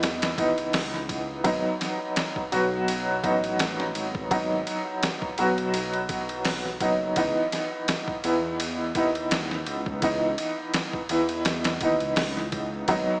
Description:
trip hop; 84 BPM; 4/4; swing 55% on 16ths; C# minor; A4 = 443 Hz
warm upright piano; accompaniment; 0.0-13.2 s; E3 to F#4; -25 LUFS; equal; tremolo, vintage 12-bit sampler grit, tape echo
dark detuned saw bass; bass; 0.0-13.1 s; F#1 to E2; -34 LUFS; equal; tube saturation
trip hop sampler-style drum kit; drums; 0.0-13.1 s; hi-hat, kick drum, ride cymbal, snare drum; -29 LUFS; equal; overdrive
light reverb; small speaker sound; -23 LUFS; side -25 dB against mid
0.0-13.2 A section
0.0 C#m7; 1.4 G#m7; 7.2 C#m7

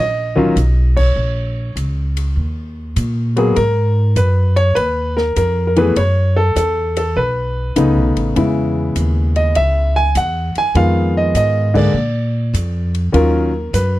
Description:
jazz piano trio; 100 BPM; 4/4; swing 67% on 8ths; Eb minor; A4 = 440 Hz
clear baby grand piano; melody; 0.0-14.0 s; C#3 to G#5; -16 LUFS; left 1 dB
upright bass; bass; 0.0-14.0 s; A1 to Bb2; -16 LUFS; equal
open jazz drum kit; drums; 0.4-13.9 s; crash cymbal, hi-hat, kick drum, ride cymbal, snare drum; -31 LUFS; equal
little or no reverb; dry, close 1970s-style studio recording; -14 LUFS; side -16 dB against mid
0.0-14.0 A section
band accent 0.9, 11.7
0.0 Eb7(no3); 1.2 Bbm; 2.4 Eb5; 3.6 Abm9; 6.0 A6; 7.2 B9; 8.4 E6; 10.8 Fm7b5; 12.0 Bb; 13.1 Ebm9

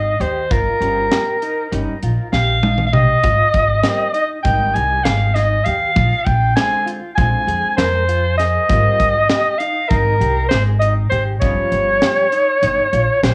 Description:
progressive instrumental, band music in an uneven meter; 198 BPM (eighths); 9/8; straight; Ab major; A4 = 440 Hz
breathy soprano saxophone; melody; 0.0-13.3 s; Bb4 to Ab5; -19 LUFS; equal; cassette tape, tape echo
mellow electric guitar; arpeggios; 0.0-13.3 s; G3 to Bb4; -32 LUFS; equal; tremolo, cassette tape, tape echo
upright bass; bass; 0.0-13.3 s; G1 to F2; -21 LUFS; equal
crisp fusion drum kit; drums; 0.2-13.3 s; hi-hat, kick drum, snare drum, toms; -23 LUFS; equal
vintage hollow-body jazz guitar; accompaniment; 0.8-12.3 s; D3 to F4; -30 LUFS; equal; cassette tape
light reverb; home recording on cassette, studio reverb; -16 LUFS; mono
0.0-13.3 A section
drum fill 2.3-3.2
0.0 Abmaj7; 0.5 Eb7/G; 3.2 Abmaj7; 6.0 Bb7; 8.7 Abmaj7; 11.4 Eb7/G

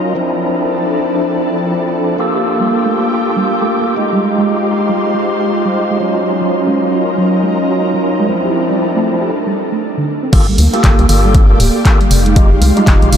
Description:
deep house; 118 BPM; 4/4; swing 60% on 16ths; G minor; A4 = 440 Hz
warm analog pad; sustained chords; 0.0-13.2 s; F3 to F5; -18 LUFS; equal; chorus, sidechain pumping
tonewheel organ; stabs; 0.0-13.2 s; F3 to A4; -16 LUFS; equal; overdrive, fast rotary speaker, sidechain pumping, tape echo
ethereal airy pad; texture; 0.0-13.2 s; D4 to D6; -21 LUFS; equal; ensemble chorus, built-in reverb, sidechain pumping
soft round pluck; arpeggios; 2.3-13.1 s; D3 to G4; -20 LUFS; right 4 dB; lush chorus, sidechain pumping, tape echo
organ-like FM bass; bass; 10.3-13.2 s; D1 to D2; -12 LUFS; equal; sidechain pumping
electronic kick drum; drums; 10.3-13.0 s; -10 LUFS; equal; overdrive
punchy analog drum machine; drums; 10.3-13.2 s; crash cymbal, handclaps, hi-hat; -20 LUFS; right 1 dB
moderate huge ambient reverb, RT60 6.4 s; dreamy mix soaked in reverb; -11 LUFS; side -8 dB against mid
0.0-10.3 A section; 10.3-13.2 B section
break 9.3-10.3; drop 10.3-13.2
0.2 Dm9; 2.2 Gm9; 4.0 Fm9; 6.0 Ebm9; 8.3 Dm9; 10.3 Gm9; 12.1 Fm9

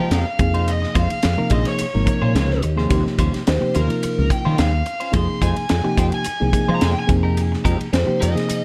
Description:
electric jazz fusion; 107 BPM; 4/4; swing 53% on 16ths; A4 = 436 Hz
bluesy overdriven lead guitar; melody; 0.0-8.6 s; Bb4 to C6; -28 LUFS; equal; distortion, tape echo
reed electric piano; accompaniment; 0.0-8.6 s; C3 to Bb4; -25 LUFS; equal
clean electric guitar; stabs; 0.0-8.5 s; G3 to C5; -32 LUFS; equal; subtle chorus
woody fretless electric bass; bass; 0.0-8.5 s; Ab1 to F3; -22 LUFS; equal; ensemble chorus
crisp fusion drum kit; drums; 0.1-8.6 s; hi-hat, kick drum, ride cymbal, snare drum; -26 LUFS; equal
little or no reverb; dark, warm production; -19 LUFS; mono
0.0-8.6 A section
0.4 Ab69/F; 1.5 Bbm9; 2.9 Eb13; 5.1 Abmaj13; 7.1 Fm11

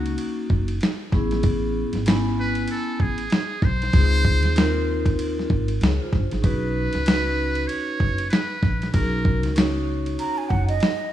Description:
hip hop, jazz-hop; 96 BPM; 4/4; swing 59% on 16ths; B major; A4 = 439 Hz
trumpet with metal mute; melody; 0.0-9.5 s; F#4 to C#5; -28 LUFS; right 1 dB
vibraphone with medium mallets; accompaniment; 0.0-10.7 s; A#3 to G#5; -27 LUFS; left 1 dB
upright bass; bass; 0.0-10.8 s; F#1 to D#2; -24 LUFS; equal
dusty soul sampler-style drum kit; drums; 0.1-11.0 s; hi-hat, kick drum, ride cymbal, snare drum; -23 LUFS; equal; overdrive
breathy mellow silver concert flute; second line; 10.2-11.1 s; D#5 to A#5; -26 LUFS; right 5 dB
studio reverb; rough home demo mix; -20 LUFS; side -12 dB against mid
0.0-11.1 A section
0.0 Bmaj9 (rootless); 1.1 Amaj9; 3.9 C#maj9; 6.4 Bmaj9

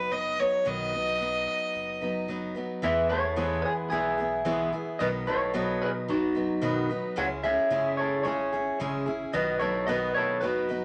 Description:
country; 111 BPM; 4/4; straight; E major; A4 = 440 Hz
rich fiddle; second line; 0.0-2.3 s; B4 to D#5; -30 LUFS; equal
picked steel-string acoustic guitar; accompaniment; 0.0-10.8 s; B2 to B4; -34 LUFS; equal
pure sine sub bass; bass; 0.0-10.8 s; F#1 to E2; -46 LUFS; equal
electric guitar at the edge of break-up; melody; 2.8-10.8 s; D#4 to F#5; -29 LUFS; equal
bright grand piano; accompaniment; 3.4-10.3 s; B3 to C#5; -40 LUFS; equal
wet club reverb, RT60 0.5 s; -28 LUFS; mono
0.0-2.8 A section; 2.8-10.8 B section
fiddle solo 0.0-2.8
0.0 B; 2.8 E; 5.0 B; 7.2 C#m; 9.3 B

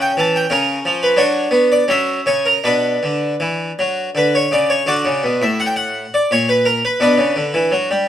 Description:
classical, baroque-style suite movement for harpsichord; 78-91 BPM; 3/4; rubato; B minor; A4 = 440 Hz
harpsichord; solo; 0.0-8.1 s; A2 to A5; -14 LUFS; equal
light reverb; minimal, uncompressed stereo recording; -14 LUFS; side -10 dB against mid
0.0-4.9 A section; 4.9-8.1 B section
0.0 C#dim; 0.5 C#; 1.2 Bm/F#; 1.9 F#5; 2.6 Bm; 6.3 N.C.; 7.0 Bm

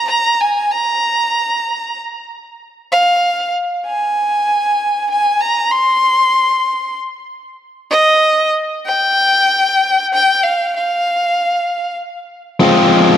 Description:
rock; 96 BPM; 4/4; straight; F minor; A4 = 440 Hz
rich violin; melody; 0.0-12.0 s; Eb5 to C6; -13 LUFS; equal; tape echo
overdriven electric guitar; riff; 12.6-13.2 s; F3 to F4; -8 LUFS; left 2 dB
moderate large studio reverb, RT60 1.4 s, small room ambience; -12 LUFS; side -10 dB against mid
0.0-12.6 A section
build-up 0.0-12.6
0.0 N.C.; 12.6 Fm

